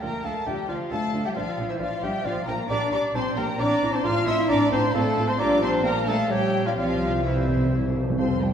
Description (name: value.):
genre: quick classical-period movement for symphony orchestra.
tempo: 133 BPM.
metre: 3/4.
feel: straight.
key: unclear.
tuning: A4 = 435 Hz.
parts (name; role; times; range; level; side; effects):
warm chamber violin section; melody; 0.0-8.5 s; E5 to F6; -32 LUFS; left 2 dB; none.
clear oboe; second line; 0.0-8.5 s; E4 to F5; -35 LUFS; right 1 dB; none.
hollow concert flute; second line; 0.0-8.5 s; C5 to C6; -31 LUFS; equal; none.
warm chamber violin section; second line; 0.0-8.5 s; E4 to C6; -30 LUFS; left 2 dB; none.
warm chamber viola section; accompaniment; 0.0-8.5 s; F3 to F5; -31 LUFS; right 1 dB; none.
mellow French horn section; sustained chords; 0.0-8.5 s; E3 to F4; -29 LUFS; left 2 dB; none.
dark chamber double bass section; bass; 0.0-8.5 s; F1 to D2; -30 LUFS; right 1 dB; none.
rich studio cello section; bass; 0.0-8.5 s; E3 to F4; -30 LUFS; right 2 dB; none.
timpani; percussion; 6.8-8.2 s; C3; -27 LUFS; right 1 dB; none.
warm bassoon; accompaniment; 8.2-8.5 s; F3; -32 LUFS; right 2 dB; none.
room: wet scoring stage reverb, RT60 2.1 s.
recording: heard from further back in the room.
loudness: -21 LUFS.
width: side -8 dB against mid.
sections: 0.0-8.2 A section.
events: timpani fill 6.8-8.2.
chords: 0.0 Dm; 1.4 Bb; 2.7 Gm/Bb; 3.6 C7; 4.0 F/A; 5.4 Gm7/Bb; 6.3 Gm7b5/Bb; 6.8 C.